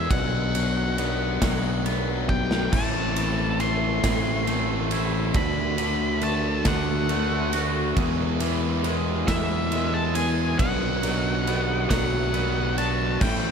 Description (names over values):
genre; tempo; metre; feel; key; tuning
post-rock; 46 BPM (dotted quarters); 6/8; straight; unclear; A4 = 441 Hz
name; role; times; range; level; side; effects
octave-fuzz lead guitar; melody; 0.0-13.5 s; E5 to C6; -30 LUFS; left 1 dB; distortion, slapback echo, tape echo
twangy electric guitar; arpeggios; 0.0-13.5 s; E2 to G#4; -32 LUFS; right 1 dB; wide subtle chorus, slapback echo, tape echo
sludgy distorted guitar; riff; 0.0-13.5 s; A2 to F#4; -29 LUFS; left 12 dB; overdrive, slapback echo
growling fingered electric bass; bass; 0.0-13.5 s; A1 to E2; -28 LUFS; right 1 dB; overdrive
big rock drum kit; drums; 0.1-13.4 s; crash cymbal, kick drum, ride cymbal, snare drum; -28 LUFS; right 2 dB; none
distorted electric guitar; riff; 2.7-13.5 s; A2 to F#4; -30 LUFS; right 12 dB; distortion, slapback echo
room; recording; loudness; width
light reverb, small room ambience; none; -22 LUFS; side -6 dB against mid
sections
0.0-13.5 A section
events
drum fill 2.3-2.7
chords
0.1 Bm; 2.7 Am; 5.4 D; 8.0 E; 10.6 Bm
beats
| 0.11 1.42 | 2.73 4.04 | 5.35 6.66 | 7.97 9.28 | 10.59 11.90 | 13.21